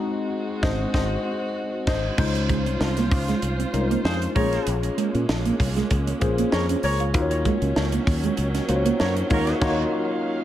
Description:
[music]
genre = polished 1980s jazz-funk pop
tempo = 97 BPM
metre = 4/4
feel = swing 54% on 16ths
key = Eb dorian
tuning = A4 = 441 Hz
[part]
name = tine electric piano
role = accompaniment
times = 0.0-10.4 s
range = Ab3 to Eb5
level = -26 LUFS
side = left 3 dB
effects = lush chorus
[part]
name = warm studio string section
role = sustained chords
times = 0.0-10.4 s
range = Eb3 to F5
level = -31 LUFS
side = right 2 dB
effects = none
[part]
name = fingered electric bass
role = bass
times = 0.6-9.8 s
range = Ab1 to Bb2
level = -26 LUFS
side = equal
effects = none
[part]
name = crisp fusion drum kit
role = drums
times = 0.6-9.8 s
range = crash cymbal, hi-hat, kick drum, snare drum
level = -26 LUFS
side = equal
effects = gated reverb
[part]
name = mellow electric guitar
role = riff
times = 2.4-9.4 s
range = Ab3 to F4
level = -27 LUFS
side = right 6 dB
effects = wide subtle chorus
[part]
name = dark horn section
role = second line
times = 4.0-9.8 s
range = F4 to Db5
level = -30 LUFS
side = equal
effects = tape echo
[sound]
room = light reverb, small room ambience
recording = none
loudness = -21 LUFS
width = side -12 dB against mid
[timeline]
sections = 0.0-2.2 A section; 2.2-10.4 B section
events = band accent 0.0-2.2, 9.6-10.4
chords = 0.0 Ab7; 2.2 Dbmaj7; 4.4 Bbm7; 7.1 Ebm7; 9.3 Ebm9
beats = 0.32 0.94 1.56 | 2.18 2.81 3.43 4.05 | 4.67 5.29 5.91 6.53 | 7.14 7.76 8.38 9.00 | 9.62 10.24

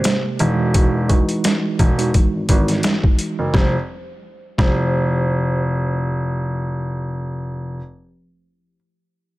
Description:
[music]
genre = hip hop, boom-bap hip-hop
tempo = 86 BPM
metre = 4/4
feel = swing 56% on 16ths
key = unclear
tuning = A4 = 440 Hz
[part]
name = vibraphone with soft mallets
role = melody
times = 0.0-5.6 s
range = C5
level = -28 LUFS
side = right 1 dB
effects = high-pass filter, low-pass filter, tape echo
[part]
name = mellow tine electric piano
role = accompaniment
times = 0.0-7.8 s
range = C3 to G4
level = -24 LUFS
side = right 1 dB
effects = medium stereo tremolo, cassette tape, high-pass filter, low-pass filter
[part]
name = boom bap sampler-style drum kit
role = drums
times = 0.0-4.8 s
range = hi-hat, kick drum, snare drum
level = -17 LUFS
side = equal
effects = overdrive
[part]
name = warm grand piano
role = bass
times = 0.4-7.8 s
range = E1 to G#1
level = -20 LUFS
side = equal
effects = none
[sound]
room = studio ambience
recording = none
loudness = -16 LUFS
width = side -18 dB against mid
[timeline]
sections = 0.0-3.5 A section; 3.5-6.3 B section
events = filter sweep 0.0-3.5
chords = 0.4 Emaj9; 3.5 Fmaj9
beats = 0.05 | 0.75 1.44 2.14 2.84 | 3.54 4.23 4.93 5.63

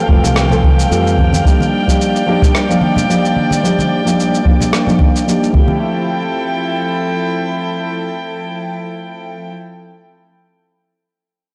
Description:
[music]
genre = sunset chillout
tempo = 110 BPM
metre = 4/4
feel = swing 55% on 16ths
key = F major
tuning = A4 = 443 Hz
[part]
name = nylon-string guitar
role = accompaniment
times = 0.0-9.5 s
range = E3 to Bb4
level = -19 LUFS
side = equal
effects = low-pass filter, digital delay
[part]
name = dark studio string section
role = sustained chords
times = 0.0-9.5 s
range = F3 to G5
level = -22 LUFS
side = equal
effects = none
[part]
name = wind-like tuned noise texture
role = texture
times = 0.0-5.8 s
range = F5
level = -29 LUFS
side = equal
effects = none
[part]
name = fingered electric bass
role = bass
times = 0.1-1.4 s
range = F1 to F2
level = -18 LUFS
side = equal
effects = tube saturation
[part]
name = electronic kick drum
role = drums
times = 0.1-5.7 s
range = none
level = -15 LUFS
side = equal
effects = none
[part]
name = electronic shaker and rim click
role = drums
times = 0.2-5.5 s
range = none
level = -24 LUFS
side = equal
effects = soft clipping on snare
[part]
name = congas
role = percussion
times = 0.2-5.8 s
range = none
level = -23 LUFS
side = equal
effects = none
[sound]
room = moderate lush hall reverb, RT60 2.0 s, digital ambience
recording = blown-out, overdriven recording, overdrive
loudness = -14 LUFS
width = mono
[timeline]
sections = 0.0-5.8 A section; 5.8-10.2 B section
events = filter sweep on nylon-string guitar 0.0-5.8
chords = 0.0 Fmaj9; 1.5 Ebmaj9/F; 5.5 Fmaj9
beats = 0.36 0.91 | 1.45 2.00 2.54 3.09 | 3.63 4.18 4.73 5.27 | 5.82 6.36 6.91 7.45 | 8.00 8.54 9.09

